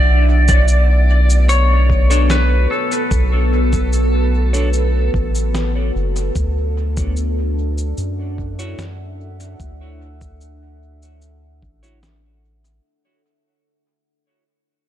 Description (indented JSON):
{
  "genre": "ambient dub",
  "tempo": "74 BPM",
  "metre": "4/4",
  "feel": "straight",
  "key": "unclear",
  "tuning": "A4 = 441 Hz",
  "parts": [
    { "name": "clean lap steel guitar", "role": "melody", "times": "0.0-5.1 s", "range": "A4 to D5", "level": "-21 LUFS", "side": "left 1 dB", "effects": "dub echo" },
    { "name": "deep dark ambient pad", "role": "sustained chords", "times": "0.0-12.8 s", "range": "B3 to F#5", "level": "-24 LUFS", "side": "equal", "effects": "chorus, built-in reverb" },
    { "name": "soft dub sub bass", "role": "bass", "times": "0.0-12.8 s", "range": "F#1 to F#2", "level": "-16 LUFS", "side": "equal", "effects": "none" },
    { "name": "electronic cabasa and snare drum", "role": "drums", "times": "0.5-12.8 s", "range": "none", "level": "-27 LUFS", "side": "equal", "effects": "dub echo" },
    { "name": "electronic kick drum", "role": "drums", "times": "0.5-11.8 s", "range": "none", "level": "-20 LUFS", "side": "equal", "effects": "none" },
    { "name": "semi-hollow electric guitar", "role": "stabs", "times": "2.1-12.0 s", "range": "D4 to C#5", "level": "-29 LUFS", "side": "equal", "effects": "wide subtle chorus, low-pass filter, dub echo" }
  ],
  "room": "digital ambience",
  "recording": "none",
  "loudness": "-14 LUFS",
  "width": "side -11 dB against mid",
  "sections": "0.0-12.8 A section",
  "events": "fade-out 0.0-12.8",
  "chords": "0.0 Bm7; 6.4 Dadd9",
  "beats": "0.68 1.49 2.30 | 3.11 3.92 4.73 5.54 | 6.35 7.16 7.97 8.78 | 9.60 10.41 11.22 12.03"
}